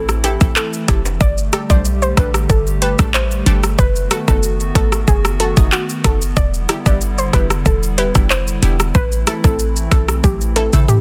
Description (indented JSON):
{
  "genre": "dancehall",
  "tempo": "93 BPM",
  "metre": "4/4",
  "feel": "straight",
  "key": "A minor",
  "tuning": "A4 = 440 Hz",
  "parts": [
    { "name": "soft round pluck", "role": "melody", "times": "0.0-11.0 s", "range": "F#4 to D5", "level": "-24 LUFS", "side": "equal", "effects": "chorus, delay" },
    { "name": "hollow soft pad", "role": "sustained chords", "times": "0.0-11.0 s", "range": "D3 to G4", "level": "-28 LUFS", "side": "equal", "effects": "chorus, sidechain pumping" },
    { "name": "short 808-style bass", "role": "bass", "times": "0.0-10.9 s", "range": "E1 to B1", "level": "-20 LUFS", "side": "equal", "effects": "none" },
    { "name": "island pop drum kit", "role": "drums", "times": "0.1-11.0 s", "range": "handclaps, hi-hat, kick drum, rim click, shaker, toms", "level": "-18 LUFS", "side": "equal", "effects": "overdrive" },
    { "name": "egg shaker and timbales", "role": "percussion", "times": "0.1-11.0 s", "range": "none", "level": "-34 LUFS", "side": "equal", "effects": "none" },
    { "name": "punchy chord stab", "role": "accompaniment", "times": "0.2-10.9 s", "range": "E3 to C5", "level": "-28 LUFS", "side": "equal", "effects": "chorus" }
  ],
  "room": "little or no reverb",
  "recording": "dense, heavily limited modern master",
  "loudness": "-15 LUFS",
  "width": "mono",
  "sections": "0.0-11.0 A section",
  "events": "drum fill 10.2-11.0",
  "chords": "0.0 Am; 1.2 Gsus2; 3.8 B7/F#; 6.4 Em7; 8.9 Am",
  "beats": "0.56 | 1.21 1.85 2.50 3.14 | 3.79 4.43 5.08 5.72 | 6.37 7.01 7.66 8.30 | 8.95 9.59 10.24 10.88"
}